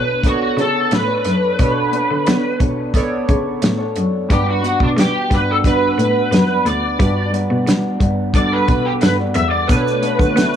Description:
indie pop, bedroom pop; 89 BPM; 4/4; straight; B minor; A4 = 440 Hz
overdriven slide guitar; melody; 0.0-10.6 s; D4 to E5; -19 LUFS; equal; ensemble chorus, tape echo
chorused retro synth keys; accompaniment; 0.0-10.6 s; G3 to D5; -24 LUFS; right 6 dB; phaser
electric guitar through a small old amp; accompaniment; 0.0-10.6 s; G3 to C#5; -23 LUFS; left 4 dB; wide subtle chorus, warbly pitch drift
clear cello; bass; 0.0-10.6 s; D2 to B3; -20 LUFS; equal
damped 70s drum kit; drums; 0.2-10.5 s; hi-hat, kick drum, snare drum; -17 LUFS; equal
hollow soft pad; sustained chords; 9.7-10.6 s; B2 to F#4; -25 LUFS; equal; ensemble chorus
egg shaker; percussion; 9.7-10.5 s; -37 LUFS; left 6 dB
light reverb, small room ambience; -14 LUFS; side -9 dB against mid
0.0-10.6 A section
electric slide guitar solo 0.0-10.6
0.0 Bm9; 4.3 Gmaj7; 9.7 Bm9

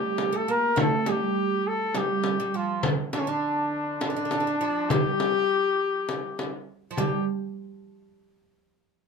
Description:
Turkish makam ensemble; 203 BPM (eighths); 7/8; straight; G makam nikriz; A4 = 440 Hz
warm flugelhorn; melody; 0.0-7.3 s; C#4 to Bb4; -26 LUFS; left 3 dB
oud; second line; 0.0-7.3 s; D3 to Bb3; -30 LUFS; right 5 dB
frame drum; percussion; 0.2-7.3 s; -28 LUFS; left 1 dB
wet small room reverb, RT60 0.5 s; minimal, uncompressed stereo recording; -24 LUFS; side -5 dB against mid
0.0-7.0 A section; 7.0-9.1 B section

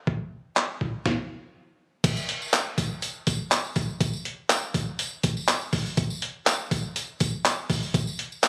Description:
pop; 122 BPM; 4/4; straight
lo-fi sampler-style drum kit; drums; 0.1-8.5 s; crash cymbal, handclaps, hi-hat, kick drum, snare drum; -27 LUFS; equal
tambourine; percussion; 2.0-8.5 s; -36 LUFS; equal
light reverb; recorded on a phone in the room, club reverb, compression; -27 LUFS; mono
0.0-2.0 A section; 2.0-8.5 B section
stop 1.1-2.0

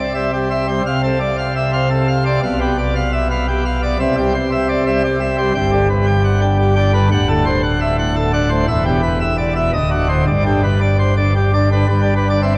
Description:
classical, organ toccata; 115 BPM; 3/4; straight; C major, G major from 5.6 s; A4 = 443 Hz
pipe organ, plenum; solo; 0.0-12.6 s; D1 to G5; -16 LUFS; equal
wet cathedral reverb, RT60 4.6 s; worn, warbling old tape, cassette tape, warbly pitch drift; -16 LUFS; mono
0.0-11.9 A section
0.0 C; 0.9 Dm7/C; 2.4 G7/B; 4.0 C; 5.6 G; 7.1 D7; 8.7 Em; 9.7 D7b9; 10.3 G

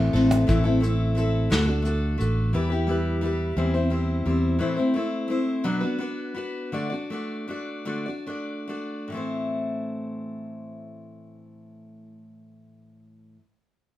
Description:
acoustic folk duo or small band; 47-58 BPM (dotted quarters); 6/8; straight; A dorian; A4 = 440 Hz
picked steel-string acoustic guitar; accompaniment; 0.0-13.5 s; A2 to D5; -26 LUFS; left 1 dB
fretless electric bass; bass; 0.0-4.6 s; A1 to E2; -24 LUFS; equal
vintage brush drum kit; drums; 0.2-2.4 s; hi-hat, kick drum, ride cymbal, snare drum; -28 LUFS; equal
cajon; percussion; 0.3-0.5 s; -33 LUFS; right 2 dB
light reverb; -23 LUFS; side -14 dB against mid
0.5-9.1 A section; 9.1-14.0 B section
slowing down 4.6-9.1
0.5 Am; 1.5 D; 2.5 Em; 3.6 C/E; 4.6 Am; 5.7 Bm; 6.7 D; 9.1 Am

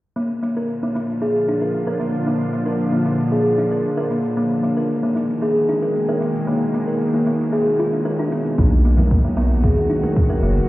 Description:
organic downtempo; 114 BPM; 4/4; straight; Bb phrygian dominant; A4 = 442 Hz
bowed-like drone; sustained chords; 0.6-10.7 s; Bb2 to F#4; -23 LUFS; equal; built-in reverb, sidechain pumping
buzzing kalimba; arpeggios; 0.2-10.6 s; Bb3 to Bb4; -20 LUFS; equal; low-pass filter, tape echo
shaker; drums; 0.2-10.7 s; -61 LUFS; equal
round analog bass; bass; 8.6-10.6 s; F#1 to B1; -16 LUFS; equal; sidechain pumping
electronic kick drum; drums; 8.6-10.3 s; -17 LUFS; equal
congas and bongos; percussion; 8.7-10.1 s; -27 LUFS; equal
wet lush hall reverb, RT60 2.2 s; heard muffled through a wall, stone room reverb, EQ; -17 LUFS; side -17 dB against mid
0.2-10.7 A section
0.2 Bb; 4.4 Abmadd9; 8.6 B

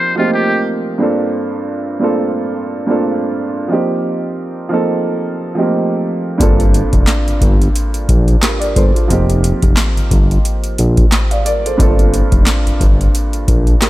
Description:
hip hop, boom-bap hip-hop; 89 BPM; 4/4; swing 56% on 16ths; G minor; A4 = 440 Hz
trumpet with metal mute; melody; 0.0-0.6 s; F4 to C5; -17 LUFS; left 1 dB; high-pass filter, low-pass filter, slapback echo
dark upright piano; accompaniment; 0.0-13.9 s; G2 to F5; -17 LUFS; right 2 dB; cassette tape, high-pass filter, low-pass filter
smooth synth bass; bass; 6.4-13.8 s; F1 to Bb1; -14 LUFS; equal
booming analog drum machine; drums; 6.4-13.9 s; handclaps, hi-hat, kick drum, snare drum; -13 LUFS; equal; overdrive
little or no reverb; -12 LUFS; side -16 dB against mid
0.0-6.4 A section; 6.4-13.9 B section
0.0 F9sus4; 1.0 Gm11; 3.7 F9sus4; 6.4 Gm11; 9.1 F9sus4; 11.8 Gm11

